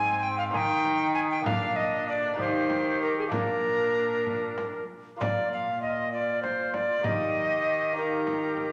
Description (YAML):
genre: classical, renaissance-style consort dance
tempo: 65 BPM (dotted quarters)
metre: 6/8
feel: straight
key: Bb mixolydian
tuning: A4 = 441 Hz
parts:
  - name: alto recorder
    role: melody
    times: 0.0-8.7 s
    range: Ab4 to Ab5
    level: -29 LUFS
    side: equal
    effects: none
  - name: mellow cor anglais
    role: second line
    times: 0.0-8.7 s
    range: C4 to G4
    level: -37 LUFS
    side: equal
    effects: none
  - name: lute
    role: accompaniment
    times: 0.0-8.7 s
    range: Ab2 to Bb4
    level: -36 LUFS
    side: equal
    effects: none
  - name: rich cello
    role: bass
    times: 0.0-8.7 s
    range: Ab2 to Eb3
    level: -38 LUFS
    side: equal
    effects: none
  - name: frame drum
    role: percussion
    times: 0.5-8.7 s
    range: none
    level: -39 LUFS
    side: equal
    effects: none
room: wet recital hall reverb, RT60 1.5 s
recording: none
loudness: -27 LUFS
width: mono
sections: 0.0-5.2 A section; 5.2-8.7 B section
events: none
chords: 0.0 Ab; 0.5 Eb; 1.5 Bb; 2.4 Eb; 3.3 Bb; 5.2 Bb5; 7.0 Eb